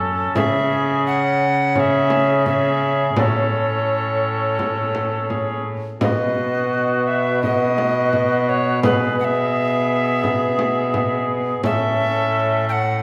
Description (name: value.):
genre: classical, renaissance-style consort dance.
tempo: 85 BPM.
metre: 4/4.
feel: straight.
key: unclear.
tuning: A4 = 442 Hz.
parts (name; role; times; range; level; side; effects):
mellow cor anglais; second line; 0.0-12.9 s; F#4 to A4; -26 LUFS; equal; none.
warm bassoon; accompaniment; 0.0-12.9 s; B3 to C#4; -27 LUFS; equal; none.
rich cello; bass; 0.0-13.0 s; F#2 to C#3; -25 LUFS; equal; none.
alto recorder; melody; 0.4-13.0 s; B4 to G5; -25 LUFS; equal; none.
frame drum; percussion; 0.4-12.0 s; none; -28 LUFS; equal; none.
room: wet recital hall reverb, RT60 1.8 s.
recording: none.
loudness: -19 LUFS.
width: mono.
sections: 0.0-13.0 A section.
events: none.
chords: 0.4 C#m; 3.2 A; 6.0 B; 11.6 A.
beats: | 0.36 1.06 1.76 2.46 | 3.17 3.88 4.59 5.30 | 6.01 6.72 7.43 8.13 | 8.84 9.54 10.24 10.94 | 11.64 12.34.